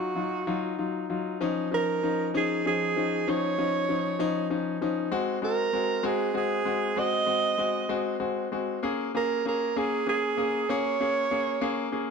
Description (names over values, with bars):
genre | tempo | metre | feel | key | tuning
pop | 65 BPM (dotted quarters) | 6/8 | straight | Db major | A4 = 440 Hz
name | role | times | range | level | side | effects
breathy alto saxophone | melody | 0.0-11.9 s | Gb4 to Eb5 | -27 LUFS | right 6 dB | none
clear concert grand piano | accompaniment | 0.0-12.1 s | F3 to Ab4 | -28 LUFS | left 4 dB | none
room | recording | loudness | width
moderate echo chamber reverb, RT60 1.9 s | none | -25 LUFS | side -5 dB against mid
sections
0.0-1.4 A section; 1.4-12.1 B section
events
none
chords
0.0 Ebmadd9; 1.4 Dbadd9; 5.1 Ab7; 8.8 Bbm7